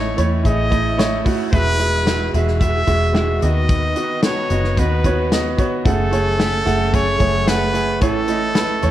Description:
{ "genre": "piano-driven pop", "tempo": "111 BPM", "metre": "4/4", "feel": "straight", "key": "E major", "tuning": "A4 = 439 Hz", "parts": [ { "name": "brilliant trumpet", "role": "melody", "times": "0.0-8.9 s", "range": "A4 to E5", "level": "-22 LUFS", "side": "equal", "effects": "none" }, { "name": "bright upright piano", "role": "accompaniment", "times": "0.0-8.9 s", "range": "A2 to G#5", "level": "-20 LUFS", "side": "right 2 dB", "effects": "none" }, { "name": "warm studio string section", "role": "sustained chords", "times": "0.0-8.9 s", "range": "D#3 to G#5", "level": "-30 LUFS", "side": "equal", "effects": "none" }, { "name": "vintage muted fingered electric bass", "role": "bass", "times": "0.0-8.9 s", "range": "E1 to E2", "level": "-20 LUFS", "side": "equal", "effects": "none" }, { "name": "natural country drum kit", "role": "drums", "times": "0.2-8.9 s", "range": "hi-hat, kick drum, snare drum", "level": "-20 LUFS", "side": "left 1 dB", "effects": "none" } ], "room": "light reverb", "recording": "worn, warbling old tape, cassette tape, warbly pitch drift", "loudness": "-15 LUFS", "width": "side -12 dB against mid", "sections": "0.0-8.9 A section", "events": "none", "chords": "0.0 A; 1.5 Eadd9; 3.4 B; 5.9 F#madd9; 8.0 A", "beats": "0.45 0.99 | 1.53 2.07 2.61 3.15 | 3.69 4.24 4.78 5.32 | 5.86 6.40 6.94 7.48 | 8.02 8.56" }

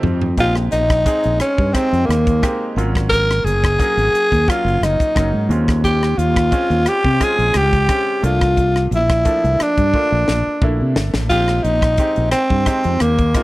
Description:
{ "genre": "electric jazz fusion", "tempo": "88 BPM", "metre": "4/4", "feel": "swing 53% on 16ths", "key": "Bb dorian", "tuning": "A4 = 441 Hz", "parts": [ { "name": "bright grand piano", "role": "accompaniment", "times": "0.0-13.4 s", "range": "F3 to F5", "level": "-26 LUFS", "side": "right 2 dB", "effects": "none" }, { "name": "fretless electric bass", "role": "bass", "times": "0.0-13.3 s", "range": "Gb1 to C3", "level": "-18 LUFS", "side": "equal", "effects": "wide subtle chorus" }, { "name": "crisp fusion drum kit", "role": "drums", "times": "0.0-13.4 s", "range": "crash cymbal, hi-hat, kick drum, rim click, snare drum, toms", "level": "-20 LUFS", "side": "equal", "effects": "none" }, { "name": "growling tenor saxophone", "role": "melody", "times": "0.4-13.4 s", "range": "Bb3 to Bb4", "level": "-17 LUFS", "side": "equal", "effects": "none" } ], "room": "small room ambience", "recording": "dry, close 1970s-style studio recording", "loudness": "-14 LUFS", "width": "side -18 dB against mid", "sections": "0.4-13.4 A section", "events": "drum fill 0.0-0.4, 9.9-11.3", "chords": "0.4 Bb13sus4; 2.8 Ab13sus4; 5.5 Eb13sus4; 8.2 C13sus4; 11.3 Bb13sus4", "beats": "| 0.38 1.06 1.74 2.42 | 3.10 3.79 4.47 5.15 | 5.83 6.52 7.20 7.88 | 8.57 9.25 9.94 10.62 | 11.30 11.99 12.67 13.35" }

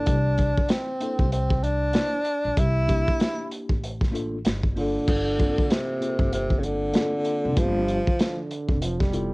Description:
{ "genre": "hip hop, jazz-hop", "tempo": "96 BPM", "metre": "4/4", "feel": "swing 59% on 16ths", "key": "G dorian", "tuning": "A4 = 440 Hz", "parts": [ { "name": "breathy tenor saxophone", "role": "melody", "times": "0.0-8.5 s", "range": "C3 to E4", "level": "-26 LUFS", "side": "equal", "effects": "none" }, { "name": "mellow tine electric piano", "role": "accompaniment", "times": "0.0-9.3 s", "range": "Bb3 to C5", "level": "-31 LUFS", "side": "left 1 dB", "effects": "medium stereo tremolo" }, { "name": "upright bass", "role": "bass", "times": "0.1-9.3 s", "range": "F1 to C2", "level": "-27 LUFS", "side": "equal", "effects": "none" }, { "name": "crunchy breakbeat drum kit", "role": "drums", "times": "0.1-9.3 s", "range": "crash cymbal, hi-hat, kick drum, snare drum", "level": "-24 LUFS", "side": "equal", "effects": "cassette tape" }, { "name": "breathy trombone", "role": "second line", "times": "8.2-9.3 s", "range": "D3 to G3", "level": "-30 LUFS", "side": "right 2 dB", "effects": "analog delay" } ], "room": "light reverb", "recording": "home recording on cassette", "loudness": "-22 LUFS", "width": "side -25 dB against mid", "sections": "0.0-5.1 A section; 5.1-9.3 A section", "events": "none", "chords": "0.1 C13; 4.5 Gm9; 5.1 Gm11", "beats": "| 0.07 0.70 1.32 1.95 | 2.58 3.20 3.83 4.45 | 5.08 5.70 6.33 6.95 | 7.58 8.20 8.82" }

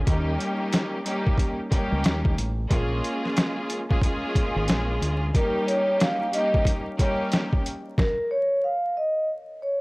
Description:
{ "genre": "hip hop, boom-bap hip-hop", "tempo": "91 BPM", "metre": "4/4", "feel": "swing 62% on 16ths", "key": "unclear", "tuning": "A4 = 442 Hz", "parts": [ { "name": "deep dub fingered electric bass", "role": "bass", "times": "0.0-5.3 s", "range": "Ab1 to Eb2", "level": "-26 LUFS", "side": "equal", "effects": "none" }, { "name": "clear studio string section", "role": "accompaniment", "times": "0.1-7.6 s", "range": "G3 to Ab4", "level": "-28 LUFS", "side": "equal", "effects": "cassette tape, high-pass filter, low-pass filter" }, { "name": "trip hop sampler-style drum kit", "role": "drums", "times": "0.1-8.2 s", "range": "hi-hat, kick drum, snare drum", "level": "-23 LUFS", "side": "equal", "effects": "overdrive" }, { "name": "vibraphone with soft mallets", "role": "melody", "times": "5.3-9.8 s", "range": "Bb4 to F5", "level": "-24 LUFS", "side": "equal", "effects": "high-pass filter, low-pass filter" } ], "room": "little or no reverb", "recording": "dry, gritty hardware recording, vinyl crackle", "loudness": "-22 LUFS", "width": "side -25 dB against mid", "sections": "0.0-9.8 A section", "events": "break 0.1-5.3", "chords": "0.1 Eb7; 2.7 Bbm7; 5.3 Eb7; 8.0 N.C.", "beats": "| 0.07 0.73 1.39 2.04 | 2.70 3.36 4.02 4.68 | 5.34 6.00 6.66 7.32 | 7.98 8.64 9.30" }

